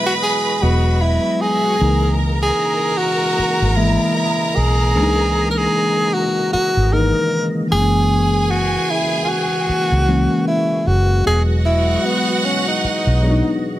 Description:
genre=lush 1970s-style soul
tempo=76 BPM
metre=4/4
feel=swing 58% on 16ths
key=C# dorian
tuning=A4 = 440 Hz
part: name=breathy tenor saxophone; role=melody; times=0.0-13.6 s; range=B3 to A#4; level=-19 LUFS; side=equal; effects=none
part: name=warm studio violin section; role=second line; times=0.0-13.8 s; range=D#4 to B5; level=-23 LUFS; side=right 2 dB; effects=none
part: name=tine electric piano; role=accompaniment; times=0.0-13.8 s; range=D#3 to D#5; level=-21 LUFS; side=left 2 dB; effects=phaser
part: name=percussive tonewheel organ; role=sustained chords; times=0.0-13.8 s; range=C#3 to D#5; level=-28 LUFS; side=right 1 dB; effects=slow rotary speaker, chorus vibrato
part: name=vintage muted fingered electric bass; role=bass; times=0.6-13.4 s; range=E1 to C#2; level=-17 LUFS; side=equal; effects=none
room=light reverb, small room ambience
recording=none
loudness=-14 LUFS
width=side -14 dB against mid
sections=0.0-13.8 A section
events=none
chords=0.0 Emaj9; 1.8 C#m69; 7.7 F#9; 11.3 Emaj9

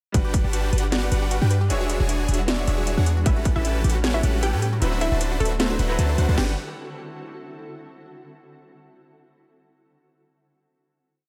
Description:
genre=future bass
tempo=154 BPM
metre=4/4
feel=swing 54% on 16ths, half-time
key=G major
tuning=A4 = 440 Hz
part: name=bright concert grand piano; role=accompaniment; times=0.1-6.5 s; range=F#3 to D5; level=-36 LUFS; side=equal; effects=sidechain pumping, tape echo
part: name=shimmering ambient pad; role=sustained chords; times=1.4-6.6 s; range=D3 to F#5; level=-40 LUFS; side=equal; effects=chorus, built-in reverb, sidechain pumping
part: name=unison pluck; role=arpeggios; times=0.1-6.6 s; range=E4 to C5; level=-37 LUFS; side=equal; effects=none
part: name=supersaw chords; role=riff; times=0.1-6.5 s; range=C#4 to A5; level=-31 LUFS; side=equal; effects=sidechain pumping
part: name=warm 808-style bass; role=bass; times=0.1-6.6 s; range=D1 to A2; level=-24 LUFS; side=equal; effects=tube saturation, sidechain pumping
part: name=trap drum kit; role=drums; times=0.1-0.4, 3.3-3.5, 6.4-6.5 s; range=crash cymbal, kick drum, snare drum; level=-24 LUFS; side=equal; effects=overdrive
part: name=trap drum kit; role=drums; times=0.1-6.3 s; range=hi-hat, snare drum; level=-30 LUFS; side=equal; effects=overdrive
part: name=unison pluck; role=melody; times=3.3-6.5 s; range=A3 to G5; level=-32 LUFS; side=equal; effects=sidechain pumping, dub echo
room=little or no reverb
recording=none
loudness=-22 LUFS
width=mono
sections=0.1-6.4 drop; 6.4-7.9 final chord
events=drop 0.1-6.4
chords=0.1 Gmaj7; 1.7 E13; 3.3 A13; 4.8 D13; 6.4 Gmaj7

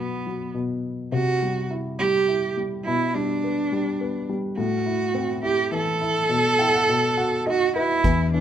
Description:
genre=acoustic folk-pop ballad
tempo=104 BPM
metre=3/4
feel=straight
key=unclear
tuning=A4 = 438 Hz
part: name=rich cello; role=melody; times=0.0-8.4 s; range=B3 to A4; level=-22 LUFS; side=right 3 dB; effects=none
part: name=dark baby grand piano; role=accompaniment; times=0.0-8.4 s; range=A2 to G5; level=-26 LUFS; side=left 2 dB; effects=none
part: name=mellow fretless electric bass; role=bass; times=8.0-8.4 s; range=E2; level=-22 LUFS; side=left 2 dB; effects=none
part: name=cloth-damped thuddy drum kit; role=drums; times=8.0-8.2 s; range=hi-hat, kick drum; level=-22 LUFS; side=equal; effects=none
room=light reverb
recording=minimal, uncompressed stereo recording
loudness=-21 LUFS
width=side -10 dB against mid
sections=0.0-1.1 A section; 1.1-8.0 B section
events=none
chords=0.0 B5; 1.1 C; 2.9 G/B; 4.6 Am; 6.3 Bsus4; 6.9 B

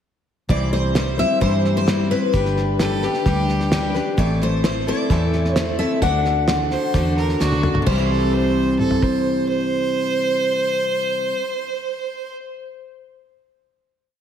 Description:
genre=honky-tonk and classic country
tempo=130 BPM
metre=4/4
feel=straight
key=C lydian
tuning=A4 = 440 Hz
part: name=picked steel-string acoustic guitar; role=melody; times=0.5-10.9 s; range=B4 to F#5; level=-24 LUFS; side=left 2 dB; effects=wide subtle chorus, analog delay
part: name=picked steel-string acoustic guitar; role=accompaniment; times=0.5-11.5 s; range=A2 to C5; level=-22 LUFS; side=left 1 dB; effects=none
part: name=vintage muted fingered electric bass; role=bass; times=0.5-10.9 s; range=G1 to G2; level=-23 LUFS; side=equal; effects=none
part: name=cloth-damped thuddy drum kit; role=drums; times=0.5-9.1 s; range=crash cymbal, hi-hat, kick drum, snare drum, toms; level=-24 LUFS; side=right 1 dB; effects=none
part: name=clear fiddle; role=second line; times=2.8-12.3 s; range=F#4 to C5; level=-23 LUFS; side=right 2 dB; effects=none
room=wet lush hall reverb, RT60 1.8 s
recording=dreamy mix soaked in reverb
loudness=-17 LUFS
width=side -9 dB against mid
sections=0.5-7.9 A section; 7.9-11.6 final chord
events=drum fill 7.4-7.9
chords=0.5 C; 2.3 G; 4.2 Am; 6.0 D; 7.9 C

